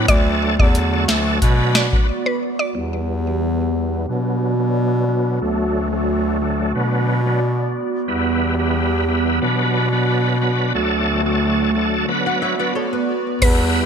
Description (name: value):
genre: dancehall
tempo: 90 BPM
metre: 4/4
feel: straight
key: B minor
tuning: A4 = 436 Hz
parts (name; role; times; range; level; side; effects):
- bright tonewheel organ; accompaniment; 0.0-13.9 s; F#3 to B4; -22 LUFS; equal; overdrive, chorus vibrato, fast rotary speaker, sidechain pumping, low-pass filter
- airy breathy pad; sustained chords; 0.0-13.9 s; D3 to D5; -23 LUFS; right 2 dB; chorus, sidechain pumping, low-pass filter
- clear bass clarinet; bass; 0.0-13.9 s; D2 to B2; -20 LUFS; equal; none
- mallet-like synth pluck; melody; 0.1-2.7, 13.4-13.6 s; B4 to E5; -23 LUFS; equal; chorus, ping-pong delay
- booming analog drum machine; drums; 0.1-2.1, 13.4-13.6 s; crash cymbal, hi-hat, kick drum, snare drum; -17 LUFS; equal; gated reverb
- flamenco guitar; arpeggios; 12.3-13.4 s; A4 to F#5; -26 LUFS; left 3 dB; low-pass filter, ping-pong delay
room: moderate lush hall reverb, RT60 2.4 s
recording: bright 1980s-style digital production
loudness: -16 LUFS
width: side -7 dB against mid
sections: 0.0-2.8 A section; 2.8-13.4 B section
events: break 2.1-2.8, 12.1-13.4; filter sweep 2.8-13.4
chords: 0.1 D; 1.4 Bm; 2.8 Em; 4.1 Bm; 5.4 D; 6.8 Bm; 8.1 Em; 9.4 Bm; 10.8 D; 12.1 Bm